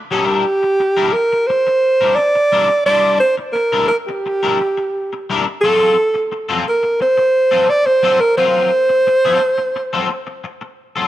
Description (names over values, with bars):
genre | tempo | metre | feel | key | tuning
funk | 87 BPM | 4/4 | straight | unclear | A4 = 440 Hz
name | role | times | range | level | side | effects
breathy alto saxophone | melody | 0.1-10.4 s | G4 to D5 | -14 LUFS | right 1 dB | none
electric guitar at the edge of break-up | accompaniment | 0.1-11.1 s | F#3 to C5 | -21 LUFS | left 5 dB | ensemble chorus
room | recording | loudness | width
moderate echo chamber reverb, RT60 2.2 s | none | -13 LUFS | side -13 dB against mid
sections
0.1-11.1 A section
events
none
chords
0.1 C9 (rootless); 5.6 F#maj7(b5, no3)